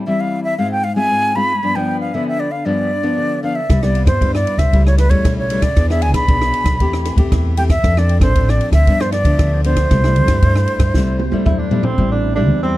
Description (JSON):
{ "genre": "samba and choro", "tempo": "116 BPM", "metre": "4/4", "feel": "straight", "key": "C major", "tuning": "A4 = 439 Hz", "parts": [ { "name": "nylon-string guitar", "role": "accompaniment", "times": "0.0-12.8 s", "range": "G2 to A4", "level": "-20 LUFS", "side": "left 2 dB", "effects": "none" }, { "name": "breathy concert flute", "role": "melody", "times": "0.1-11.7 s", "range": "B4 to B5", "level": "-20 LUFS", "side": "right 1 dB", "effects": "tape echo" }, { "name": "upright bass", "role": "bass", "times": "3.7-12.8 s", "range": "A1 to G2", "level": "-16 LUFS", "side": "equal", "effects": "none" }, { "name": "compact cocktail drum kit", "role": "drums", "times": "3.7-12.0 s", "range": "kick drum, ride cymbal, rim click, snare drum, toms", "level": "-17 LUFS", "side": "equal", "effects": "none" }, { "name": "mellow tenor saxophone", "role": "second line", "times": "11.5-12.8 s", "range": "C4 to E4", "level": "-20 LUFS", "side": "right 4 dB", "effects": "none" } ], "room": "light reverb", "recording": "dark, warm production", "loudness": "-13 LUFS", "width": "side -16 dB against mid", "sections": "0.0-12.0 A section", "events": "drum fill 10.9-12.0", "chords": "0.0 Am7 (rootless); 0.6 Fm/Ab; 1.6 G7; 3.7 Cmaj7; 4.7 A7/C#; 5.8 E7; 6.8 Am7/E; 7.8 Dm7; 8.9 G7; 9.9 C6; 12.0 Am7" }